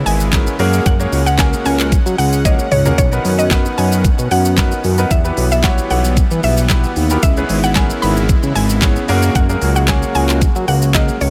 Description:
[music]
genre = dance-pop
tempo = 113 BPM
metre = 4/4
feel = straight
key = unclear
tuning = A4 = 440 Hz
[part]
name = soft supersaw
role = sustained chords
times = 0.0-11.3 s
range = C#3 to F#5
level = -26 LUFS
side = equal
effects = sidechain pumping
[part]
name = fat analog bass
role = bass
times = 0.0-11.3 s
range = G#1 to F#3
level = -18 LUFS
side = equal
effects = sidechain pumping
[part]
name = mallet-like synth pluck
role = melody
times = 0.1-11.3 s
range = C#5 to B5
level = -24 LUFS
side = equal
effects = chorus, sidechain pumping, digital delay
[part]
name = pop drum kit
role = drums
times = 0.1-11.3 s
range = handclaps, hi-hat, kick drum, shaker, snare drum, toms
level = -19 LUFS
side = equal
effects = none
[part]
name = clear concert grand piano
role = accompaniment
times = 0.3-11.1 s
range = A#3 to C#5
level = -23 LUFS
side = equal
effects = sidechain pumping
[sound]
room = digital ambience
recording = none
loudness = -14 LUFS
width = mono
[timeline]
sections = 0.0-11.3 A section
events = drum fill 2.5-3.0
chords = 0.0 C#m7; 0.6 F#add9; 3.0 Bmaj7; 5.1 Emadd9; 7.2 C#m7; 9.1 F#add9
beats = 0.33 | 0.86 1.39 1.92 2.45 | 2.98 3.51 4.04 4.58 | 5.11 5.64 6.17 6.70 | 7.23 7.76 8.29 8.82 | 9.35 9.88 10.42 10.95

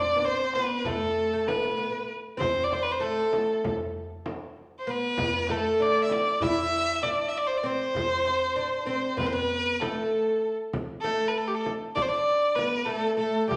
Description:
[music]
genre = Turkish makam ensemble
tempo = 195 BPM (eighths)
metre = 9/8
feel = straight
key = A makam ussak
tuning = A4 = 441 Hz
[part]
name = rich violin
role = melody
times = 0.0-13.6 s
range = G4 to E5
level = -29 LUFS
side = equal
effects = none
[part]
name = oud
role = second line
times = 0.0-13.6 s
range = G3 to E4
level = -32 LUFS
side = equal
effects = none
[part]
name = darbuka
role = percussion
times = 0.5-10.5 s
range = none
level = -42 LUFS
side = equal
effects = none
[part]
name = frame drum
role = percussion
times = 0.9-13.6 s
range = none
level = -39 LUFS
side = equal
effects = none
[sound]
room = wet large studio reverb, RT60 1.2 s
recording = none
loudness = -27 LUFS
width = mono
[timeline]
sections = 0.0-10.7 A section; 10.7-13.6 B section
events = none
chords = none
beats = 0.24 0.55 0.86 1.17 1.48 1.79 2.10 | 2.40 2.71 3.02 3.33 3.64 3.95 4.25 4.56 4.87 | 5.18 5.49 5.79 6.10 6.41 6.72 7.03 7.33 7.64 | 7.95 8.26 8.57 8.87 9.18 9.49 9.80 10.11 10.41 | 10.72 11.03 11.34 11.65 11.95 12.26 12.57 12.88 13.19 | 13.49

